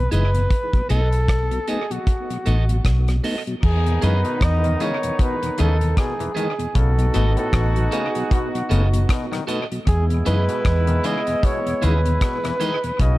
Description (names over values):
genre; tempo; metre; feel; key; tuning
roots reggae; 77 BPM; 4/4; swing 59% on 16ths; E major; A4 = 442 Hz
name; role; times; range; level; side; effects
warm flugelhorn; melody; 0.0-13.2 s; F#4 to D#5; -26 LUFS; equal; tape echo
mellow tonewheel organ; accompaniment; 0.0-12.9 s; E2 to D#4; -29 LUFS; left 2 dB; chorus vibrato, slow rotary speaker, tape echo
vintage muted fingered electric bass; bass; 0.0-13.2 s; F#1 to F#2; -18 LUFS; equal; none
electric guitar at the edge of break-up; accompaniment; 0.1-12.8 s; E4 to D#5; -32 LUFS; right 6 dB; tape echo
damped 70s drum kit; drums; 0.1-13.2 s; crash cymbal, hi-hat, kick drum, rim click; -23 LUFS; equal; tape echo
warm horn section; second line; 3.6-13.2 s; D#3 to F#4; -28 LUFS; right 2 dB; tape echo
overdriven clav; arpeggios; 4.0-13.2 s; A2 to E3; -31 LUFS; left 6 dB; none
room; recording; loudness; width
studio reverb; dark, warm production; -18 LUFS; side -18 dB against mid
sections
0.0-3.6 A section; 3.6-13.2 B section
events
none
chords
0.0 Emaj7; 0.5 B7; 3.6 Emaj7; 6.8 B7; 9.9 Emaj7